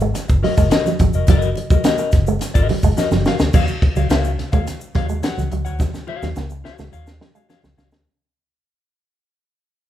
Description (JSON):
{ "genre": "funk", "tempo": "106 BPM", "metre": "4/4", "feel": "straight", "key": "Eb minor", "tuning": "A4 = 440 Hz", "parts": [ { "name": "mellow electric guitar", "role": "accompaniment", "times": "0.0-8.0 s", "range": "Gb4 to Gb5", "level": "-24 LUFS", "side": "left 6 dB", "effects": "none" }, { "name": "electric guitar with an envelope filter", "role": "riff", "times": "0.0-7.9 s", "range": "Gb3 to Bb3", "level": "-24 LUFS", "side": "right 5 dB", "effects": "none" }, { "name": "vintage muted fingered electric bass", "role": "bass", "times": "0.0-8.0 s", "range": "F1 to Eb2", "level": "-22 LUFS", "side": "equal", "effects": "none" }, { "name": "egg shaker", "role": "percussion", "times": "0.0-8.1 s", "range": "none", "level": "-38 LUFS", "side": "left 2 dB", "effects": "none" }, { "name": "congas", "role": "percussion", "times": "0.1-7.8 s", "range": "none", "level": "-29 LUFS", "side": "right 4 dB", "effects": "none" }, { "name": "compact cocktail drum kit", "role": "drums", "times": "0.2-8.1 s", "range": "crash cymbal, hi-hat, kick drum, snare drum", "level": "-17 LUFS", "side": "equal", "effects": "none" } ], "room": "moderate large studio reverb, RT60 0.9 s", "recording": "band playing live in one room", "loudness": "-15 LUFS", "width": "side -12 dB against mid", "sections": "0.0-3.5 A section; 3.5-8.1 B section", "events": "drum fill 3.0-3.5, 5.8-8.1; fade-out 3.5-8.1", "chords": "0.0 Gb6; 3.5 Ebm9" }